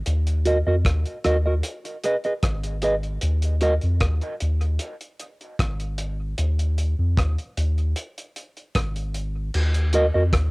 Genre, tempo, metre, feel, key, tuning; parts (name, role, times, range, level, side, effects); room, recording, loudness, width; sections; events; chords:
dub reggae; 76 BPM; 4/4; straight; Eb minor; A4 = 435 Hz
soft dub sub bass; bass; 0.0-10.5 s; Ab1 to F2; -22 LUFS; equal
cloth-damped thuddy drum kit; drums; 0.1-10.5 s; crash cymbal, hi-hat, kick drum, rim click; -26 LUFS; equal; cassette tape
mellow electric guitar; accompaniment; 0.5-3.7, 9.9-10.2 s; Gb4 to Eb5; -23 LUFS; right 1 dB; high-pass filter, cassette tape, dub echo, plate reverb
light reverb; home recording on cassette; -21 LUFS; side -27 dB against mid
0.0-9.5 A section
0.1 Ebm; 1.6 Abm; 3.2 N.C.; 9.5 Ebm